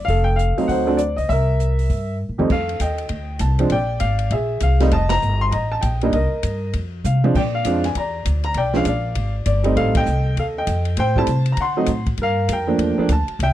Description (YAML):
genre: jazz piano trio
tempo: 198 BPM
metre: 4/4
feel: swing 63% on 8ths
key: F major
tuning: A4 = 439 Hz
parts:
  - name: warm baby grand piano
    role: melody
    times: 0.0-13.5 s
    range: F2 to C6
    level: -20 LUFS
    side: equal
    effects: none
  - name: upright bass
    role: bass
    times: 0.0-13.5 s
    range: F1 to D3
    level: -20 LUFS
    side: equal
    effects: none
  - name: open jazz drum kit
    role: drums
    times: 0.1-13.5 s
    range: crash cymbal, hi-hat, kick drum, ride cymbal, snare drum, toms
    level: -28 LUFS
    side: equal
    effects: none
room: light reverb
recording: dry, close 1970s-style studio recording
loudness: -17 LUFS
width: side -13 dB against mid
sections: 0.0-2.5 A section; 2.5-13.5 A section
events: drum fill 2.2-2.5, 7.0-7.3; band accent 5.1, 9.9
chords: 0.1 F; 0.7 D7b9; 1.3 C7; 2.5 F9; 3.7 Bb9; 4.9 F9; 6.1 Cm7; 6.7 F5; 7.3 Bb7; 8.6 Bdim7; 9.8 F9; 11.0 Am7; 11.6 D7; 12.2 Gm7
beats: | 0.08 0.39 0.69 0.99 | 1.29 1.59 1.90 2.20 | 2.50 2.81 3.11 3.41 | 3.71 4.01 4.32 4.62 | 4.92 5.22 5.53 5.83 | 6.13 6.43 6.74 7.04 | 7.34 7.64 7.95 8.25 | 8.55 8.85 9.16 9.46 | 9.76 10.06 10.37 10.67 | 10.97 11.28 11.58 11.88 | 12.18 12.48 12.79 13.09 | 13.39